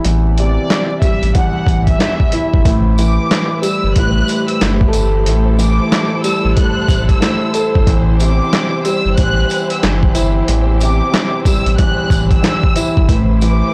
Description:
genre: hip hop, boom-bap hip-hop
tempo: 92 BPM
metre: 4/4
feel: swing 61% on 16ths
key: A dorian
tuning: A4 = 439 Hz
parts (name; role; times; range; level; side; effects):
- dark grand piano; accompaniment; 0.0-13.7 s; E2 to A4; -20 LUFS; equal; cassette tape, high-pass filter, low-pass filter
- trip hop sampler-style drum kit; drums; 0.0-13.6 s; handclaps, hi-hat, kick drum, snare drum; -17 LUFS; equal; none
- saturated sub bass; bass; 0.1-13.6 s; G1 to A1; -17 LUFS; equal; tube saturation
- rich symphonic violin section; melody; 0.4-13.7 s; D5 to F#6; -24 LUFS; equal; high-pass filter, low-pass filter, digital delay
- warm studio string section; sustained chords; 2.6-13.7 s; A3 to C5; -26 LUFS; equal; high-pass filter, low-pass filter
- tambourine; percussion; 3.0-13.6 s; none; -33 LUFS; equal; none
room: studio ambience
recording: blown-out, overdriven recording, vinyl crackle, overdrive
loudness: -14 LUFS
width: mono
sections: 0.0-2.7 A section; 2.7-13.7 B section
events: none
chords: 0.0 C; 2.7 Am7; 7.9 C; 13.1 Am7

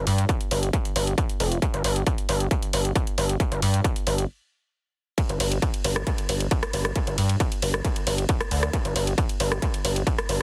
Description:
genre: driving peak-time techno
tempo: 135 BPM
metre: 4/4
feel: straight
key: unclear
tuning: A4 = 437 Hz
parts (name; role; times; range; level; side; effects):
- gritty driven synth bass; bass; 0.0-10.4 s; F1 to G2; -26 LUFS; equal; distortion, sidechain pumping
- punchy analog drum machine; drums; 0.1-10.4 s; hi-hat, ride cymbal, rim click; -31 LUFS; equal; none
- electronic kick drum; drums; 0.3-10.2 s; none; -28 LUFS; equal; distortion, overdrive
room: digital ambience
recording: heavily compressed radio sound, multiband compression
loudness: -25 LUFS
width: mono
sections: 0.0-5.2 A section; 5.2-10.4 B section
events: stop 4.3-5.2; drop 5.2-10.4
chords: none

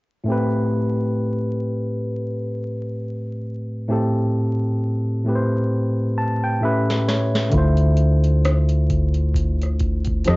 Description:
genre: R&B, neo-soul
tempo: 66 BPM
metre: 4/4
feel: swing 58% on 16ths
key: A minor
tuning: A4 = 440 Hz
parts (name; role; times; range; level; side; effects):
- barky tine electric piano; accompaniment; 0.2-10.4 s; A2 to A5; -20 LUFS; equal; phaser
- booming analog drum machine; drums; 6.9-10.4 s; hi-hat, kick drum, rim click, snare drum; -24 LUFS; equal; overdrive, cassette tape
- mellow fretless electric bass; bass; 7.5-10.4 s; D2 to F2; -18 LUFS; equal; none
room: light reverb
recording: home recording on cassette, vinyl crackle, nothing above 7.6 kHz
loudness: -18 LUFS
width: side -22 dB against mid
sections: 0.3-10.4 A section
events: tine electric piano fill 5.7-7.5; drum fill 6.6-7.5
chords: 0.3 Am7; 6.6 A7; 7.5 Dm9

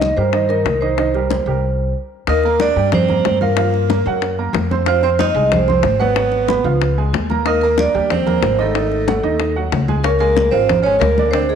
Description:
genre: Afro-Cuban jazz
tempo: 185 BPM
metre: 4/4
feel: straight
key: unclear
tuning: A4 = 441 Hz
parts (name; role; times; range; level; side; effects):
- vibraphone with medium hard mallets; melody; 0.0-11.6 s; Ab4 to Eb5; -18 LUFS; right 1 dB; none
- warm upright piano; accompaniment; 0.0-11.6 s; D3 to F6; -22 LUFS; right 9 dB; none
- upright bass; bass; 0.0-11.6 s; Ab1 to G2; -20 LUFS; left 2 dB; none
- bongos; percussion; 0.0-11.6 s; none; -24 LUFS; left 13 dB; none
- congas; percussion; 0.0-11.6 s; none; -24 LUFS; left 1 dB; none
- warm tenor saxophone; second line; 2.3-11.6 s; Ab3 to Eb4; -24 LUFS; right 10 dB; none
room: moderate echo chamber reverb, RT60 1.7 s, studio ambience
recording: 1960s-style stereo with parts hard left and right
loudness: -14 LUFS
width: side -8 dB against mid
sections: 0.0-2.3 A section; 2.3-11.6 B section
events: stop 1.6-2.3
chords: 0.0 Cm7; 2.3 Ebmaj9; 3.6 F#maj7; 4.2 F#; 4.9 Fm7; 6.2 Abm7; 6.8 Dbadd9; 7.5 Ebmaj7; 8.8 Ab5; 10.0 Dbmaj7

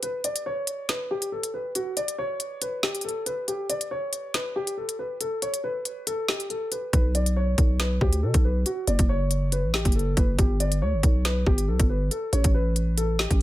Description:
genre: hip hop, drill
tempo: 139 BPM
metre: 4/4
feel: half-time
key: B minor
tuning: A4 = 444 Hz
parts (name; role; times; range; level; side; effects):
- dark concert grand piano; melody; 0.0-13.4 s; F#4 to D5; -29 LUFS; left 1 dB; low-pass filter, tape echo
- drill drum kit; drums; 0.0-13.4 s; hi-hat, kick drum, snare drum; -24 LUFS; equal; none
- growling 808-style bass; bass; 6.9-13.4 s; F#1 to B2; -24 LUFS; equal; none
room: little or no reverb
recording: none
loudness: -23 LUFS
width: side -15 dB against mid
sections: 0.0-13.4 A section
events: break 0.0-6.9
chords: 0.0 N.C.; 6.9 Bm; 8.7 F#5; 10.4 G; 12.1 Asus2

